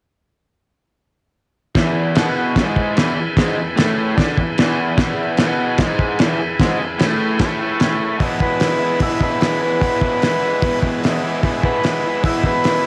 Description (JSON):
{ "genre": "garage rock duo or trio", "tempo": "149 BPM", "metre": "4/4", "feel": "straight", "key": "E major", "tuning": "A4 = 440 Hz", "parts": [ { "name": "overdriven combo organ", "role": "sustained chords", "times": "1.7-12.9 s", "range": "E4 to B5", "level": "-29 LUFS", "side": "equal", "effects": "cassette tape" }, { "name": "raw garage guitar", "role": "riff", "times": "1.8-12.9 s", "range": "E2 to E4", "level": "-23 LUFS", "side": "equal", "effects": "overdrive, cassette tape" }, { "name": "cloth-damped thuddy drum kit", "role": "drums", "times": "1.8-12.7 s", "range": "crash cymbal, hi-hat, kick drum, snare drum", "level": "-21 LUFS", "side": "equal", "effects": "cassette tape" }, { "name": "combo organ", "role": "melody", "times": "8.4-12.8 s", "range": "E4 to B4", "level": "-22 LUFS", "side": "equal", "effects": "spring reverb, cassette tape" } ], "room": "light reverb", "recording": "home recording on cassette", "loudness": "-18 LUFS", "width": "mono", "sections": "1.8-8.2 A section; 8.2-12.9 B section", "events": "transistor combo organ fill 7.4-8.2", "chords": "1.8 E" }